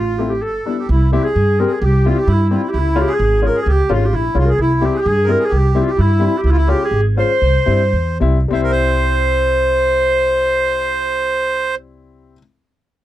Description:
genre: klezmer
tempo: 97-130 BPM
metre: 2/4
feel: straight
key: C phrygian dominant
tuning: A4 = 440 Hz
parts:
  - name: mellow clarinet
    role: melody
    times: 0.0-11.7 s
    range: E4 to C5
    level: -18 LUFS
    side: left 1 dB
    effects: slapback echo
  - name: accordion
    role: second line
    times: 0.0-11.8 s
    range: E4 to C5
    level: -21 LUFS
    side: right 5 dB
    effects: none
  - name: upright bass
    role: bass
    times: 0.0-12.4 s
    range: G1 to G2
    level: -16 LUFS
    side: right 1 dB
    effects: none
  - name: clear upright piano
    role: accompaniment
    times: 0.2-12.4 s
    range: G3 to G4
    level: -22 LUFS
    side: left 6 dB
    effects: none
room: light reverb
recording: dry, close 1970s-style studio recording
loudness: -13 LUFS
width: side -13 dB against mid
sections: 0.9-8.5 A section; 8.5-11.0 B section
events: slowing down 6.5-8.5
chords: 0.4 G; 0.9 C; 2.7 Db; 4.6 C; 6.5 Db; 7.4 C

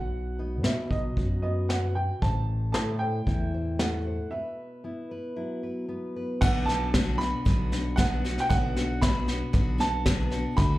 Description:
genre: indie folk with a building arrangement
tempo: 115 BPM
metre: 4/4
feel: straight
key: unclear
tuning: A4 = 439 Hz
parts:
  - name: warm upright piano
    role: melody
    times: 0.0-10.8 s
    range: D#5 to B5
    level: -32 LUFS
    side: right 2 dB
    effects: plate reverb
  - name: fingerpicked steel-string acoustic guitar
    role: accompaniment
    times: 0.0-6.4 s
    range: A2 to C5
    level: -33 LUFS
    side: left 1 dB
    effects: plate reverb, slapback echo
  - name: fingered electric bass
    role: bass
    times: 0.0-10.8 s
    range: A1 to B2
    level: -29 LUFS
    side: equal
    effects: none
  - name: vintage brush drum kit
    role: drums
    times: 0.6-10.7 s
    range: crash cymbal, kick drum, snare drum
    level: -27 LUFS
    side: equal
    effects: none
  - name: picked steel-string acoustic guitar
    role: accompaniment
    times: 6.4-10.8 s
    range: B2 to F#4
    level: -32 LUFS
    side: left 4 dB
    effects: plate reverb
room: light reverb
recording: live gig heard through the venue's PA, club reverb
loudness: -25 LUFS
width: side -16 dB against mid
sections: 0.0-6.4 A section; 6.4-10.8 B section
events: break 4.3-6.4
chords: 0.0 B; 2.2 Am; 4.3 Bsus4; 6.4 Bm

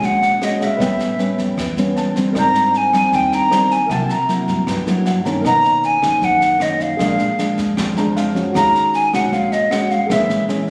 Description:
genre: bossa nova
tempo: 155 BPM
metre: 4/4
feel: straight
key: unclear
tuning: A4 = 440 Hz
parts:
  - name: jazz flute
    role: melody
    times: 0.0-10.5 s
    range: D#5 to A#5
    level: -19 LUFS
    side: equal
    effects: plate reverb
  - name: nylon-string guitar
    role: accompaniment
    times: 0.0-10.7 s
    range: F2 to Gb4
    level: -22 LUFS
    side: equal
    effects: none
  - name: warm baby grand piano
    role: accompaniment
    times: 0.0-10.7 s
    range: Gb4 to G6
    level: -31 LUFS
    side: equal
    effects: none
  - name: upright bass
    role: bass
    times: 0.0-10.7 s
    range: Ab1 to G2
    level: -31 LUFS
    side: equal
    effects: none
  - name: jazz brush drum kit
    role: drums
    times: 0.0-10.7 s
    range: kick drum, rim click, snare drum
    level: -31 LUFS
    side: equal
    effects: none
room: moderate studio reverb, RT60 0.7 s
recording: recorded on a phone in the room, studio reverb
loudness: -17 LUFS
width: mono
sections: 0.0-10.7 A section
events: grand piano fill 1.8-2.3, 4.9-5.4, 7.8-8.5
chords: 0.0 Ebm11; 0.8 A9; 2.3 Abmaj9#11; 3.9 C7#11; 5.4 Bmaj9; 7.0 Bb7; 8.5 Ebm11; 10.1 Bbm7b5

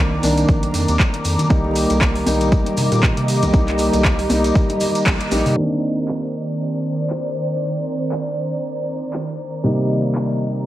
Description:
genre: deep house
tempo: 118 BPM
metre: 4/4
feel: swing 56% on 16ths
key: C minor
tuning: A4 = 440 Hz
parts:
  - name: hollow soft pad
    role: sustained chords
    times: 0.0-10.7 s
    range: C3 to D6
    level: -26 LUFS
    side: equal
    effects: chorus, sidechain pumping
  - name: felt-muted upright piano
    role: stabs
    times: 0.0-10.7 s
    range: C3 to Eb4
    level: -20 LUFS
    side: equal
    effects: sidechain pumping, tape echo
  - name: rubbery square bass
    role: bass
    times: 0.0-5.6 s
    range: Bb1 to C3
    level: -22 LUFS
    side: equal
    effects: sidechain pumping
  - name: ethereal airy pad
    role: texture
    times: 0.1-10.7 s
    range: Eb3 to D6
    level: -26 LUFS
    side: right 1 dB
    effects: ensemble chorus, built-in reverb, sidechain pumping
  - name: deep house drum kit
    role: drums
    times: 0.2-10.3 s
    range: handclaps, hi-hat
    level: -25 LUFS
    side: equal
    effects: overdrive
  - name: maracas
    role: percussion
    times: 0.2-5.5 s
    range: none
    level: -31 LUFS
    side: right 2 dB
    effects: none
  - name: electronic kick drum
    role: drums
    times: 0.5-5.2 s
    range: none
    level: -17 LUFS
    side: equal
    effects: overdrive
  - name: congas and bongos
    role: percussion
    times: 0.6-5.5 s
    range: none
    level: -30 LUFS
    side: left 2 dB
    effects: none
room: light reverb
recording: vinyl crackle, low-pass filter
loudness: -16 LUFS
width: side -14 dB against mid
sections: 0.0-5.6 A section; 5.6-10.7 B section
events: band accent 5.1; filter sweep 5.6-10.7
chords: 0.0 Cm9; 1.5 Eb/C; 5.6 Cm9; 9.6 Eb

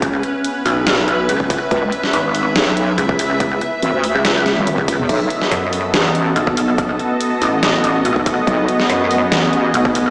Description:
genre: heavy wobble dubstep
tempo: 142 BPM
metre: 4/4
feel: half-time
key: unclear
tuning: A4 = 439 Hz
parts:
  - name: pulsing pluck wobble bass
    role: bass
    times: 0.0-10.1 s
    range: G#1 to F#2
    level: -17 LUFS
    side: equal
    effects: chorus, overdrive
  - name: dubstep drum kit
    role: drums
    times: 0.0-10.0 s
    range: crash cymbal, hi-hat, snare drum, toms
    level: -19 LUFS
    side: equal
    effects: overdrive
  - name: electronic kick drum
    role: drums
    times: 0.0-9.9 s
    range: none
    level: -22 LUFS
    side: equal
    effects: overdrive
  - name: granular cloud pad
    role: texture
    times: 0.0-10.1 s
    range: A3 to E5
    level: -20 LUFS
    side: equal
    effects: built-in reverb, sidechain pumping
  - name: wobble bass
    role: bass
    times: 1.7-9.7 s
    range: G#1 to E2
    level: -17 LUFS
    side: equal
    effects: chorus, overdrive
  - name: lush unison pad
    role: sustained chords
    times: 5.1-10.1 s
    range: B3 to D#5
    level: -20 LUFS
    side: equal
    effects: chorus, sidechain pumping
room: moderate lush hall reverb, RT60 2.0 s, digital ambience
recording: played on a big sound system in a bare room, stone room reverb, small speaker sound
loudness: -14 LUFS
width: side -28 dB against mid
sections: 0.0-10.1 A section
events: drum fill 4.5-5.1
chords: 0.0 C#m7; 5.1 B7

